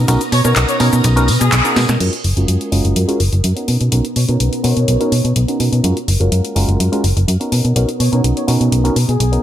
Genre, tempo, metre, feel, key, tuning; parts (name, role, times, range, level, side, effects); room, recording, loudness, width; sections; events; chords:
filtered disco house; 125 BPM; 4/4; straight; A4 = 439 Hz
reed electric piano; accompaniment; 0.0-9.4 s; G#3 to A#4; -20 LUFS; right 1 dB; phaser, low-pass filter
string machine, full ensemble; sustained chords; 0.0-9.4 s; B3 to E#6; -24 LUFS; equal; ensemble chorus, low-pass filter
slap-like FM bass; bass; 0.0-9.4 s; F#1 to B2; -14 LUFS; equal; low-pass filter
house drum kit; drums; 0.1-9.4 s; crash cymbal, handclaps, hi-hat, shaker, snare drum; -21 LUFS; left 1 dB; small room ambience
tambourine; percussion; 0.1-2.0 s; -28 LUFS; right 1 dB; low-pass filter on perc
warm trumpet section; melody; 0.3-9.4 s; G#4 to C#5; -24 LUFS; equal; low-pass filter, ping-pong delay
light reverb; -12 LUFS; side -11 dB against mid
0.0-2.0 A section; 2.0-9.4 B section
band accent 1.5; drum fill 1.8; filter sweep 2.0-9.4
0.0 Bmaj7; 2.0 F#maj7; 3.7 Bmaj7; 5.8 F#maj7; 7.5 Bmaj7